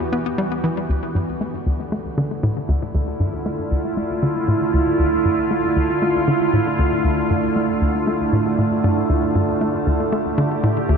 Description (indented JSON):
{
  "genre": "ambient, sequencer-driven space music",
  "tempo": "117 BPM",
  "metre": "4/4",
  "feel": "straight",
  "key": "D dorian",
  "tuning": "A4 = 440 Hz",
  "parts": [
    { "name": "evolving wavetable pad", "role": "sustained chords", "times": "0.0-11.0 s", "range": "D3 to G4", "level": "-20 LUFS", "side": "right 2 dB", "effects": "chorus, built-in reverb, shimmer reverb" },
    { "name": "hollow square pluck", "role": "riff", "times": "0.0-11.0 s", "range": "D2 to B3", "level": "-21 LUFS", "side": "left 1 dB", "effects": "chorus, ping-pong delay" }
  ],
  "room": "wet huge ambient reverb, RT60 7.8 s",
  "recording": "dark, warm production",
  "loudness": "-18 LUFS",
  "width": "side -6 dB against mid",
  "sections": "0.9-11.0 A section",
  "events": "none",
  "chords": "0.0 Em; 0.9 Dm",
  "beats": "0.38 | 0.89 1.41 1.92 2.43 | 2.94 3.46 3.97 4.48 | 5.00 5.51 6.02 6.53 | 7.05 7.56 8.07 8.59 | 9.10 9.61 10.12 10.64"
}